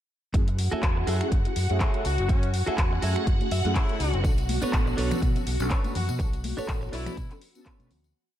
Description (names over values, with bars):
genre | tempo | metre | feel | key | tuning
filtered disco house | 123 BPM | 4/4 | swing 55% on 16ths | F# minor | A4 = 439 Hz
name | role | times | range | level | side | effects
mellow synth brass | accompaniment | 0.3-7.9 s | A3 to G#5 | -34 LUFS | right 1 dB | chorus, phaser, sidechain pumping
phased string machine | sustained chords | 0.3-8.2 s | F#4 to F#5 | -33 LUFS | equal | ensemble chorus, phaser, sidechain pumping
direct-recorded clean electric guitar | riff | 0.3-7.9 s | D4 to F#5 | -35 LUFS | right 2 dB | vintage 12-bit sampler grit, sidechain pumping
overdriven fingered electric bass | bass | 0.3-8.1 s | F#1 to B2 | -28 LUFS | equal | sidechain pumping
electronic kick drum | drums | 0.3-7.8 s | none | -25 LUFS | equal | studio reverb
house drum kit | drums | 0.3-8.1 s | finger snaps, handclaps, hi-hat | -35 LUFS | left 1 dB | sidechain pumping on hats, studio reverb
bright horn section | melody | 2.0-7.3 s | C#4 to F#4 | -37 LUFS | left 3 dB | sidechain pumping, tape echo
tambourine and congas | percussion | 4.2-8.1 s | none | -36 LUFS | left 5 dB | sidechain pumping on perc
room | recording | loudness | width
light reverb | none | -23 LUFS | side -12 dB against mid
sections
0.3-8.1 drop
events
drop 0.3-8.1; clean electric guitar fill 3.3-4.2; fade-out 5.5-8.1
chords
0.3 F#m9; 4.2 Bm9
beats
| 0.34 0.83 1.32 1.81 | 2.29 2.78 3.27 3.76 | 4.25 4.73 5.22 5.71 | 6.20 6.68 7.17 7.66